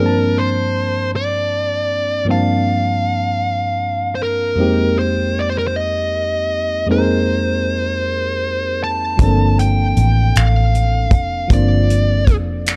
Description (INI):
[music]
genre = slow six-eight R&B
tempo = 52 BPM (dotted quarters)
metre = 6/8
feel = straight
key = G minor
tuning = A4 = 441 Hz
[part]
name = fuzz lead guitar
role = melody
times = 0.0-12.3 s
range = Bb4 to A5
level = -22 LUFS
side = equal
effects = distortion, plate reverb
[part]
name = FM electric piano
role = accompaniment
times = 0.0-12.8 s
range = F2 to A5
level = -22 LUFS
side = equal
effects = chorus
[part]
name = vintage muted fingered electric bass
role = bass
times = 9.2-12.8 s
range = F1 to A1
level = -17 LUFS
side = equal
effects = none
[part]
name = damped 70s drum kit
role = drums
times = 9.2-12.8 s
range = finger snaps, hi-hat, kick drum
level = -16 LUFS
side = equal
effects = none
[sound]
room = light reverb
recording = dark, warm production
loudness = -17 LUFS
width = mono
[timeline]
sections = 0.0-12.8 A section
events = none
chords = 0.0 Gm11; 4.6 Fm11; 9.2 Gm11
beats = 1.11 | 2.27 3.42 | 4.58 5.73 | 6.88 8.04 | 9.19 10.35 | 11.50 12.65